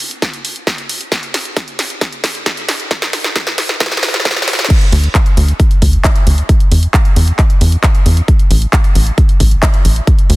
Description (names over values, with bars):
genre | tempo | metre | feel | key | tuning
uplifting trance | 134 BPM | 4/4 | straight | unclear | A4 = 444 Hz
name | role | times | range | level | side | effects
big-room dance drum kit | drums | 0.0-10.4 s | crash cymbal, handclaps, hi-hat, snare drum | -17 LUFS | equal | high-pass filter on hats, high-pass filter on snare, high-pass filter on cymbals
electronic kick drum | drums | 0.2-10.2 s | none | -11 LUFS | equal | high-pass filter on kick
tight sequencer bass | bass | 4.9-10.4 s | A1 to E2 | -10 LUFS | equal | sidechain pumping
room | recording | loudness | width
little or no reverb | dense, heavily limited modern master | -10 LUFS | side -20 dB against mid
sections
0.0-4.7 A section; 4.7-10.4 B section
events
build-up 0.0-4.7; drum fill 0.0-4.7; drop 4.7-10.4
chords
none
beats
0.22 0.67 | 1.12 1.57 2.01 2.46 | 2.91 3.36 3.81 4.25 | 4.70 5.15 5.60 6.04 | 6.49 6.94 7.39 7.83 | 8.28 8.73 9.18 9.63 | 10.07